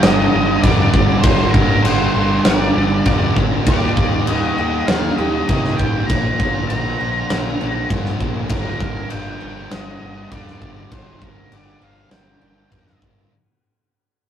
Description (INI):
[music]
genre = rock, shoegaze and dream pop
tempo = 99 BPM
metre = 4/4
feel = straight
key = G minor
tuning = A4 = 444 Hz
[part]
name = octave-fuzz lead guitar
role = melody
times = 0.0-13.0 s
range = Bb4 to Bb5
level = -24 LUFS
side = equal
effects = distortion
[part]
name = overdriven electric guitar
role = riff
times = 0.0-13.3 s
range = G2 to Bb4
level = -23 LUFS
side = right 5 dB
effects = none
[part]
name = thick fuzz guitar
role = riff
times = 0.0-13.3 s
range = G2 to Eb4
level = -23 LUFS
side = left 4 dB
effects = distortion
[part]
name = growling picked electric bass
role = bass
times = 0.0-13.2 s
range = G1 to C3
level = -25 LUFS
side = equal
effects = overdrive
[part]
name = big rock drum kit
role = drums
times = 0.0-13.2 s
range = crash cymbal, kick drum, snare drum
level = -18 LUFS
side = equal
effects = none
[part]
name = picked twelve-string acoustic guitar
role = arpeggios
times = 3.7-13.3 s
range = F3 to G4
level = -33 LUFS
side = right 3 dB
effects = none
[sound]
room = moderate studio reverb, RT60 0.5 s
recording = rough rehearsal-room recording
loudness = -14 LUFS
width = side -9 dB against mid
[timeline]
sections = 0.0-13.3 A section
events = fade-out 1.7-13.3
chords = 0.0 Gm7; 3.7 Ebmaj7; 6.1 Bb; 8.5 Gm7